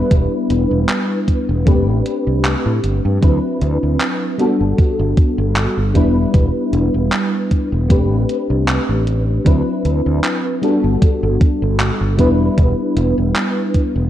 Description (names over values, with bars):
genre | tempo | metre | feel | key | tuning
vaporwave | 77 BPM | 4/4 | swing 54% on 16ths | unclear | A4 = 440 Hz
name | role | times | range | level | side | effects
mellow FM electric piano | accompaniment | 0.0-14.1 s | F#3 to B4 | -17 LUFS | left 1 dB | ensemble chorus, cassette tape, analog delay
fretless electric bass | bass | 0.1-14.1 s | E1 to A2 | -18 LUFS | equal | none
electronic kick drum | drums | 0.1-13.9 s | none | -13 LUFS | equal | none
gated 80s digital drum machine | drums | 0.1-13.9 s | handclaps, hi-hat | -23 LUFS | equal | gated reverb
room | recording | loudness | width
light reverb, digital ambience | dark, warm production, cassette tape | -14 LUFS | side -12 dB against mid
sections
0.0-14.1 A section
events
none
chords
0.0 Em7; 1.7 Am11; 3.2 D13; 4.4 Gmaj9; 6.0 Em7; 7.9 Am11; 9.5 D13; 10.6 Gmaj9; 12.2 Em7